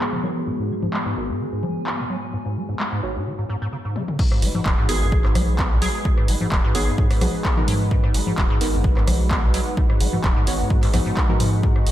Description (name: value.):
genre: acid house.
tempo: 129 BPM.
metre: 4/4.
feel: swing 54% on 16ths.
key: G# minor.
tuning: A4 = 440 Hz.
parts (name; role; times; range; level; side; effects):
warm analog pad; sustained chords; 0.0-11.9 s; G#2 to D#5; -30 LUFS; equal; chorus, vintage 12-bit sampler grit, sidechain pumping.
deep acid bass; riff; 0.0-11.9 s; G#1 to B3; -27 LUFS; equal; overdrive, wide subtle chorus, cassette tape, sidechain pumping, ping-pong delay.
punchy analog drum machine; drums; 0.0-11.9 s; congas, crash cymbal, handclaps, hi-hat, rim click, toms; -26 LUFS; left 1 dB; low-pass filter on snare, low-pass filter on hats, low-pass filter on perc, low-pass filter on toms, low-pass filter on cymbals, low-pass filter on room.
warbly tape-like pad; texture; 0.0-11.9 s; B3 to G#5; -34 LUFS; right 2 dB; chorus, built-in reverb, phaser, sidechain pumping.
deep mellow chord stab; stabs; 0.2-11.4 s; B3 to C#5; -32 LUFS; right 1 dB; chorus, ping-pong delay.
electronic kick drum; drums; 4.2-11.7 s; none; -20 LUFS; equal; none.
round analog bass; bass; 4.4-11.9 s; D#1 to G#2; -23 LUFS; equal; sidechain pumping.
glassy wavetable pluck; melody; 4.9-7.2 s; G#4; -31 LUFS; right 1 dB; chorus, tape echo.
room: light reverb, digital ambience.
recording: none.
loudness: -18 LUFS.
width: side -13 dB against mid.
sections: 0.0-4.2 A section; 4.2-11.9 B section.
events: filter sweep on analog synth pad 0.0-4.2; filter sweep on synth stab 0.0-4.2; drum fill 4.0; drop 4.2-11.9.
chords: 0.0 G#m7.